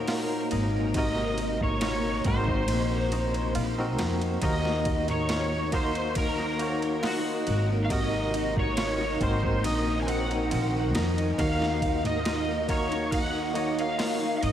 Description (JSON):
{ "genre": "trip hop", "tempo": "69 BPM", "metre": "4/4", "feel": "straight", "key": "Eb dorian", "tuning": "A4 = 439 Hz", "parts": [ { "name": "overdriven slide guitar", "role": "melody", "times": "0.0-14.5 s", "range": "Gb4 to Ab5", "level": "-31 LUFS", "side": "right 1 dB", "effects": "ensemble chorus, dub echo" }, { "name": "barky tine electric piano", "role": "accompaniment", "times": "0.0-14.5 s", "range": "C3 to Eb5", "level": "-32 LUFS", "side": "equal", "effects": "tremolo, tape echo" }, { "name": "string machine, cellos", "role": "sustained chords", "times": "0.0-14.5 s", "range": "Bb3 to Bb4", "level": "-33 LUFS", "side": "equal", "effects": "ensemble chorus" }, { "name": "Celtic harp", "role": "arpeggios", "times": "0.0-14.5 s", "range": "Eb4", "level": "-35 LUFS", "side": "left 4 dB", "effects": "tape echo" }, { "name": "upright bass", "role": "bass", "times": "0.0-14.5 s", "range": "Ab1 to F2", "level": "-30 LUFS", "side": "equal", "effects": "tube saturation" }, { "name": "boom bap sampler-style drum kit", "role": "drums", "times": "0.1-14.5 s", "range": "hi-hat, kick drum, ride cymbal, snare drum", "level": "-33 LUFS", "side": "right 1 dB", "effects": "overdrive" }, { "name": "tabla", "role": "percussion", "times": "0.1-14.2 s", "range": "none", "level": "-39 LUFS", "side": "right 2 dB", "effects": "none" } ], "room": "moderate huge ambient reverb, RT60 8.5 s", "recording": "dreamy mix soaked in reverb", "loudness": "-24 LUFS", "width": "side -10 dB against mid", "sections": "0.0-14.5 A section", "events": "none", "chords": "0.0 Ebm; 0.9 Ab7; 4.4 Ebm; 7.9 Ab7; 11.4 Ebm" }